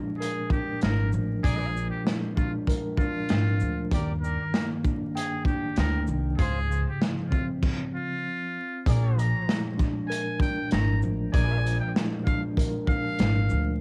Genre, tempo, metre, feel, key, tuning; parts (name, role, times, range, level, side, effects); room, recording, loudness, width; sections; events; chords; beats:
hip hop, boom-bap hip-hop; 97 BPM; 4/4; swing 56% on 16ths; A4 = 440 Hz
mellow tine electric piano; accompaniment; 0.0-13.8 s; G2 to G5; -33 LUFS; equal; high-pass filter, low-pass filter, cassette tape
trumpet with metal mute; melody; 0.2-13.8 s; F4 to Bb5; -36 LUFS; equal; high-pass filter, low-pass filter, cassette tape
crunchy breakbeat drum kit; drums; 0.2-13.7 s; crash cymbal, hi-hat, kick drum, shaker, snare drum; -30 LUFS; equal; cassette tape
upright bass; bass; 0.8-13.8 s; Ab1 to Eb2; -28 LUFS; equal; tube saturation
mellow trumpet section; stabs; 1.4-11.6 s; F4 to D5; -42 LUFS; equal; high-pass filter, low-pass filter, cassette tape, analog delay
little or no reverb; home recording on cassette, vinyl crackle; -27 LUFS; mono
0.0-8.9 A section; 8.9-13.8 B section
stop 7.6-8.9
0.0 Bb7; 3.9 Ebmaj7; 6.4 Dbmaj7; 8.9 Bb7
0.20 0.82 | 1.44 2.06 2.68 3.30 | 3.91 4.53 5.15 5.77 | 6.39 7.01 7.63 8.24 | 8.86 9.48 10.10 10.72 | 11.34 11.96 12.57 13.19